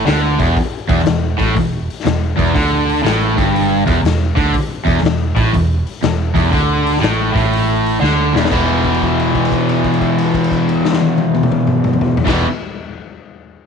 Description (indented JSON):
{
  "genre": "blues rock power trio and southern rock",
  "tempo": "121 BPM",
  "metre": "4/4",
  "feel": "swing 66% on 8ths",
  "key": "E minor",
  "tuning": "A4 = 440 Hz",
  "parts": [
    { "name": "cranked stack guitar", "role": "riff", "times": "0.0-12.5 s", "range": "E2 to E3", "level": "-15 LUFS", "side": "equal", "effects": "overdrive" },
    { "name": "vintage muted fingered electric bass", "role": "bass", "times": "0.0-12.4 s", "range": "E1 to D2", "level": "-19 LUFS", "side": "right 2 dB", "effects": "none" },
    { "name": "raw garage drum kit", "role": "drums", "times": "0.1-12.4 s", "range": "crash cymbal, hi-hat, kick drum, snare drum, toms", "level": "-20 LUFS", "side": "left 3 dB", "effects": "none" }
  ],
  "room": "small room ambience",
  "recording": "1960s-style stereo",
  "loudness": "-13 LUFS",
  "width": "side -6 dB against mid",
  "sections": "0.0-8.5 A section; 8.5-12.5 B section",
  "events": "drum fill 8.0-8.5; held note 8.5-12.2",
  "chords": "0.0 N.C.; 8.5 E5"
}